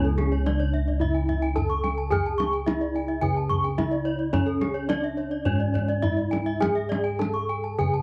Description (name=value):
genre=Balinese gamelan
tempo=99-109 BPM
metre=4/4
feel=straight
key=C# pelog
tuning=A4 = 440 Hz
part: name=gamelan-type bronze metallophone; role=melody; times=0.0-8.0 s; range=C#4 to A4-20c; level=-31 LUFS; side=equal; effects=none
part: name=gamelan-type bronze metallophone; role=arpeggios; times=0.0-7.9 s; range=G#4-30c to C#6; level=-34 LUFS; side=equal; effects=none
part: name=gamelan-type bronze metallophone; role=arpeggios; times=0.0-8.0 s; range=A4-20c to C#6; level=-36 LUFS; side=equal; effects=none
part: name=gamelan-type bossed gongs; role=bass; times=0.0-8.0 s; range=C#2 to G#4-30c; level=-29 LUFS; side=equal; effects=none
part: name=kendang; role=percussion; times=0.0-7.9 s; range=none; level=-32 LUFS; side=equal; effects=none
room=light reverb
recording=dark, warm production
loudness=-25 LUFS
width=mono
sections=0.0-8.0 A section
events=none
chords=none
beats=0.46 1.01 1.57 | 2.12 2.67 3.22 3.78 | 4.33 4.88 5.45 6.02 | 6.60 7.19 7.78